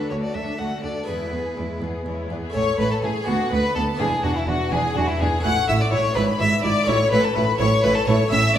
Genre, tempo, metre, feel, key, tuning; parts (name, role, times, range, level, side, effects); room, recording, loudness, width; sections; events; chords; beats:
classical, baroque-style concerto movement with solo episodes; 83 BPM (dotted quarters); 6/8; straight; A major; A4 = 442 Hz
rich symphonic violin section; melody; 0.0-8.6 s; G#4 to F#6; -29 LUFS; left 4 dB
rich violin; melody; 0.0-8.6 s; E4 to F#5; -24 LUFS; left 2 dB
rich studio violin section; second line; 0.0-8.6 s; E4 to F#5; -27 LUFS; left 1 dB
harpsichord; accompaniment; 0.0-8.6 s; D2 to A4; -29 LUFS; left 1 dB
warm studio viola section; accompaniment; 0.0-8.6 s; G#3 to E4; -30 LUFS; right 1 dB
rich chamber cello section; bass; 0.1-8.6 s; D2 to A2; -26 LUFS; right 2 dB
rich chamber double bass section; bass; 2.5-8.6 s; E1 to D2; -26 LUFS; right 1 dB
wet recital hall reverb, RT60 1.3 s; recorded in a church or concert hall; -19 LUFS; side -10 dB against mid
0.0-2.5 A section; 2.5-8.6 B section
0.0 D; 1.1 E; 2.5 A5; 3.3 Bm/D; 4.0 E5; 5.4 A; 6.2 E7/G#; 6.9 A
0.35 | 1.08 1.81 | 2.54 3.27 | 4.00 4.72 | 5.44 6.16 | 6.88 7.60 | 8.31